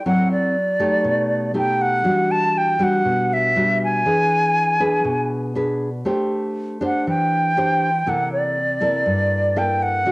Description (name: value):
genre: bossa nova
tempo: 120 BPM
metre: 4/4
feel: straight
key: E minor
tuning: A4 = 441 Hz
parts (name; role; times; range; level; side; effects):
- concert flute; melody; 0.0-10.1 s; D5 to A5; -19 LUFS; equal; none
- nylon-string guitar; accompaniment; 0.0-10.1 s; G2 to C5; -21 LUFS; equal; none
room: wet spring reverb, RT60 1.1 s, small room ambience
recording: home recording on cassette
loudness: -17 LUFS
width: side -22 dB against mid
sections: 0.0-10.1 A section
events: none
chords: 0.0 F#m7b5; 1.0 B7alt; 2.1 Em9; 4.1 E7; 6.1 Am7; 8.1 C13